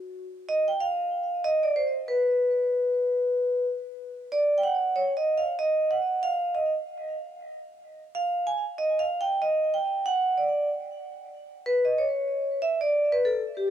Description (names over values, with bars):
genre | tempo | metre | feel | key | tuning
hip hop | 94 BPM | 4/4 | swing 60% on 16ths | unclear | A4 = 440 Hz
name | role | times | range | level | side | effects
vibraphone with medium mallets | solo | 0.5-13.7 s | G4 to G#5 | -24 LUFS | right 1 dB | tape echo
room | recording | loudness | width
wet studio reverb, RT60 0.6 s | none | -23 LUFS | side -10 dB against mid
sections
0.0-12.6 A section; 12.6-13.7 A section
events
vibraphone solo 0.0-12.6, 12.6-13.7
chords
none